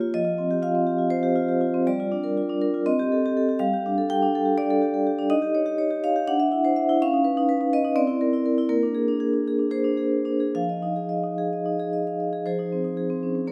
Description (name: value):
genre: classical, contemporary piece for solo vibraphone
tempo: 206-252 BPM (eighths)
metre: 7/8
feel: rubato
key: F minor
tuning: A4 = 440 Hz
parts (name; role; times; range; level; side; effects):
- vibraphone with medium mallets; solo; 0.0-13.5 s; F3 to G5; -24 LUFS; equal; none
room: wet recital hall reverb, RT60 1.5 s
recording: none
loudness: -24 LUFS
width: mono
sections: 0.0-12.5 A section; 12.5-13.5 A section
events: none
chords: 0.1 Fsus2; 1.9 Gm7; 2.9 Cm6; 3.6 Gsus2; 5.3 Eb7; 6.3 D9; 7.0 Db9; 8.0 C9; 8.7 Bb9; 10.5 Fm7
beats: | 0.12 0.38 0.62 0.87 1.12 1.37 1.62 | 1.87 2.12 2.36 2.61 2.86 3.10 3.35 | 3.60 3.84 4.09 4.33 4.57 4.81 5.05 | 5.30 5.55 5.80 6.04 6.29 6.53 6.77 | 7.01 7.26 7.50 7.74 7.98 8.22 8.47 | 8.71 8.96 9.21 9.46 9.71 9.97 10.25 | 10.54 10.82 11.10 11.38 11.65 11.92 12.19 | 12.46 12.71 12.96 13.22 13.47